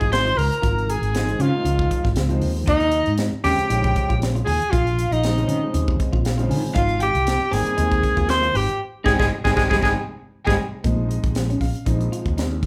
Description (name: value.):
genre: electric jazz fusion.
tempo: 118 BPM.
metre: 4/4.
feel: swing 54% on 16ths.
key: Bb dorian.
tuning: A4 = 440 Hz.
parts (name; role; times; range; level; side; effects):
breathy alto saxophone; melody; 0.0-10.5 s; Eb4 to C5; -24 LUFS; equal; none.
crunchy overdriven guitar; second line; 0.0-10.5 s; Eb5 to C6; -31 LUFS; equal; none.
warm concert grand piano; accompaniment; 0.0-12.6 s; Db3 to Ab5; -31 LUFS; equal; none.
clean electric guitar; stabs; 0.0-12.5 s; Bb3 to Ab4; -33 LUFS; equal; none.
fretless electric bass; bass; 0.0-12.7 s; Ab1 to Eb3; -25 LUFS; equal; none.
crisp fusion drum kit; drums; 0.0-12.7 s; hi-hat, kick drum, snare drum; -27 LUFS; equal; none.
room: moderate large studio reverb, RT60 0.7 s.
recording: band playing live in one room.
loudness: -21 LUFS.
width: mono.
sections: 0.0-10.8 A section; 10.8-12.7 B section.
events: grand piano fill 5.7-6.8; band accent 8.8-10.8.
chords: 0.0 Dbmaj9; 2.7 Eb13sus4; 6.8 Abmaj9; 10.8 Bb9sus4.